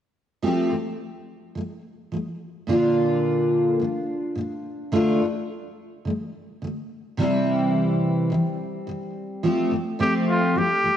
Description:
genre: pop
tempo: 106 BPM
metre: 4/4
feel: straight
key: F major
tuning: A4 = 441 Hz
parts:
  - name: picked steel-string acoustic guitar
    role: accompaniment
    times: 0.4-11.0 s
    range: Bb2 to G4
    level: -22 LUFS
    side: equal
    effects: double-tracked left and right, cassette tape
  - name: clear trumpet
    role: melody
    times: 10.0-11.0 s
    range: F4 to G4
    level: -21 LUFS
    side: equal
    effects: none
room: wet lush hall reverb, RT60 2.1 s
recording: home recording on cassette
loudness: -21 LUFS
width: side -10 dB against mid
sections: 0.4-9.4 A section; 9.4-11.0 B section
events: none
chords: 0.4 Fadd9; 2.7 Bb; 4.9 Dm; 7.2 C; 9.4 Fadd9

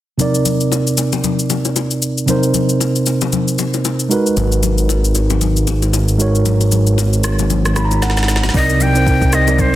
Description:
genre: amapiano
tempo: 115 BPM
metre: 4/4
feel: swing 58% on 16ths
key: C minor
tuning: A4 = 439 Hz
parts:
  - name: mellow tine electric piano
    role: accompaniment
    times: 0.2-9.8 s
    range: C3 to Cb6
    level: -17 LUFS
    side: right 2 dB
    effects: none
  - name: smooth R&B drum kit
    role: drums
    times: 0.2-9.7 s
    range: kick drum, rim click, shaker, snare drum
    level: -21 LUFS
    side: left 1 dB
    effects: none
  - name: congas and bongos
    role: percussion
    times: 0.2-9.7 s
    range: none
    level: -23 LUFS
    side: left 10 dB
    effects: none
  - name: fat analog bass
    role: bass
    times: 4.4-9.8 s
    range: Ab1 to C2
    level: -15 LUFS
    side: equal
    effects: none
  - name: breathy bright shakuhachi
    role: melody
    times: 8.6-9.8 s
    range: C5 to G5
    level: -16 LUFS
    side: left 2 dB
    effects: tape echo
room: light reverb, digital ambience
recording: dense, heavily limited modern master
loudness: -13 LUFS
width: side -14 dB against mid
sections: 0.2-8.5 A section; 8.5-9.8 B section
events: tine electric piano fill 7.5-8.5; drum fill 8.0-8.5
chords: 0.2 Cm9; 4.1 Abm9; 8.5 Cm9

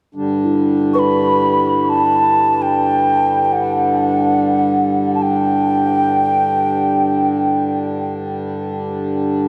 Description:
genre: world meditative, free-time meditation music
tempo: free time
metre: none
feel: none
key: G major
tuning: A4 = 440 Hz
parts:
  - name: pedal harmonium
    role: drone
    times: 0.1-9.5 s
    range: G2 to D3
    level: -20 LUFS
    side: equal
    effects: none
  - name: quartz singing bowl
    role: texture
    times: 0.4-8.3 s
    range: E4 to B4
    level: -27 LUFS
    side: equal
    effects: none
  - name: breathy alto ocarina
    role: melody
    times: 0.9-7.8 s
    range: F#5 to C#6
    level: -19 LUFS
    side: equal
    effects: diffuse ambient delay
room: wet cathedral reverb, RT60 5.4 s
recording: dark, warm production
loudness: -16 LUFS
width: mono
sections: 0.1-9.5 A section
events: none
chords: none

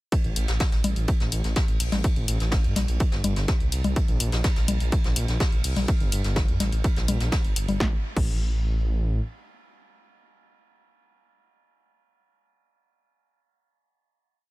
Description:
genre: melodic techno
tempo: 125 BPM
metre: 4/4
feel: straight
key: unclear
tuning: A4 = 440 Hz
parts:
  - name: electronic kick drum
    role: drums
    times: 0.1-8.3 s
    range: none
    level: -23 LUFS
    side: equal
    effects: overdrive
  - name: punchy analog drum machine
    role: drums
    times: 0.1-8.3 s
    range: congas, crash cymbal, hi-hat, snare drum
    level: -29 LUFS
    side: left 3 dB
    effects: overdrive, sidechain pumping on hats, sidechain pumping on perc, sidechain pumping on cymbals
  - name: vintage brush drum kit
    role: drums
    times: 0.1-7.7 s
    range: hi-hat, ride cymbal, snare drum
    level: -35 LUFS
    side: right 1 dB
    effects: high-pass filter on cymbals, high-pass filter on hats, high-pass filter on snare, high-pass filter on room
  - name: dark detuned saw bass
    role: bass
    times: 0.2-9.2 s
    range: G1 to A2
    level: -25 LUFS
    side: equal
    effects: sidechain pumping
room: small room ambience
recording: none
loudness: -22 LUFS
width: side -19 dB against mid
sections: 0.1-7.8 drop; 7.8-11.6 final chord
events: drop 0.1-7.8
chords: none

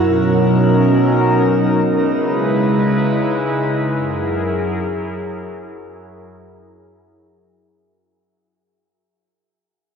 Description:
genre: hip hop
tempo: free time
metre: none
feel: none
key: unclear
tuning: A4 = 437 Hz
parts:
  - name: warbly tape-like pad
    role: solo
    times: 0.0-7.8 s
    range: F#2 to B4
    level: -15 LUFS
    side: equal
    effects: chorus, built-in reverb, ping-pong delay
room: moderate shimmer reverb, RT60 6.3 s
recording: worn, warbling old tape, cassette tape, warbly pitch drift, low-pass filter, nothing above 7.7 kHz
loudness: -14 LUFS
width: side -6 dB against mid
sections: 0.0-7.9 A section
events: fade-out 0.0-7.9; filter sweep 0.0-7.9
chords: 0.0 Bmaj9; 2.0 C#m9; 3.9 F#9

